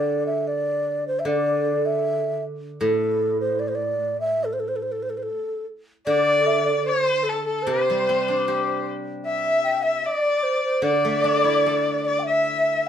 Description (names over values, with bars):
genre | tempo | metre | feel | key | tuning
chinese traditional, Chinese chamber ensemble | 75 BPM | 2/4 | rubato | unclear | A4 = 438 Hz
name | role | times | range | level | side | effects
breathy mellow xiao | melody | 0.0-12.9 s | A4 to G5 | -23 LUFS | equal | none
steel-string zither | accompaniment | 0.0-12.9 s | A2 to A4 | -26 LUFS | right 1 dB | none
clear erhu | second line | 6.1-12.9 s | A4 to E5 | -24 LUFS | left 3 dB | none
room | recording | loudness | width
wet studio reverb, RT60 0.5 s | heard from further back in the room | -20 LUFS | side -9 dB against mid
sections
0.0-6.1 A section; 6.1-12.9 B section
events
none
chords
none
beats
0.48 | 1.28 2.06 | 2.83 3.63 | 4.44 5.26 | 6.08 6.90 | 7.70 8.49 | 9.28 10.06 | 10.84 11.66 | 12.48